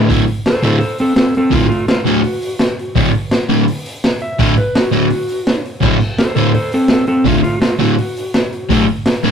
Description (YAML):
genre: garage rock duo or trio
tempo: 167 BPM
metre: 4/4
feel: straight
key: D mixolydian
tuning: A4 = 440 Hz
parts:
  - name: crunchy overdriven guitar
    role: riff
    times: 0.0-9.3 s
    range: D2 to D3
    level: -13 LUFS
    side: equal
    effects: none
  - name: raw garage drum kit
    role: drums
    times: 0.1-9.3 s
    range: crash cymbal, hi-hat, kick drum, snare drum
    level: -17 LUFS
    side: equal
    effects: none
  - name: clean lap steel guitar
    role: melody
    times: 0.5-8.8 s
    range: A3 to E5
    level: -17 LUFS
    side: equal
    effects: slapback echo
room: moderate studio reverb, RT60 0.6 s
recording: rough rehearsal-room recording, tube saturation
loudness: -12 LUFS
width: side -7 dB against mid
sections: 0.1-9.3 A section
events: none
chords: 0.1 D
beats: | 0.09 0.45 0.81 1.17 | 1.53 1.88 2.24 2.60 | 2.96 3.32 3.68 4.04 | 4.39 4.75 5.11 5.47 | 5.83 6.18 6.54 6.90 | 7.26 7.62 7.98 8.34 | 8.70 9.06